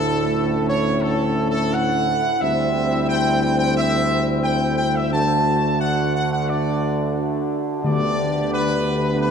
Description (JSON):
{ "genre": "classical", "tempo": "88 BPM", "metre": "4/4", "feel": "straight", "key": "D major", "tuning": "A4 = 440 Hz", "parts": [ { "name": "clear trumpet section", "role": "melody", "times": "0.0-9.3 s", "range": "A4 to A5", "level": "-22 LUFS", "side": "equal", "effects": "none" }, { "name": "mellow French horn section", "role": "sustained chords", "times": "0.0-9.3 s", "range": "C4 to G4", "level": "-26 LUFS", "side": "left 2 dB", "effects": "none" }, { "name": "mellow trombone section", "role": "sustained chords", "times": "0.0-9.3 s", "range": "A2 to C4", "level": "-26 LUFS", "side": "right 2 dB", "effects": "none" }, { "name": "warm tuba", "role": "bass", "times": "0.0-9.3 s", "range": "D2", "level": "-23 LUFS", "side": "right 1 dB", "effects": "none" }, { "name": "timpani", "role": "percussion", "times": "7.8-8.8 s", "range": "D3", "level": "-26 LUFS", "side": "left 3 dB", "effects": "none" } ], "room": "wet church reverb, RT60 2.9 s", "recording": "dark, warm production", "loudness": "-18 LUFS", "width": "side -6 dB against mid", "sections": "0.0-9.3 A section", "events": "none", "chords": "0.0 A/D; 2.4 C/D; 5.1 D; 7.8 G/D" }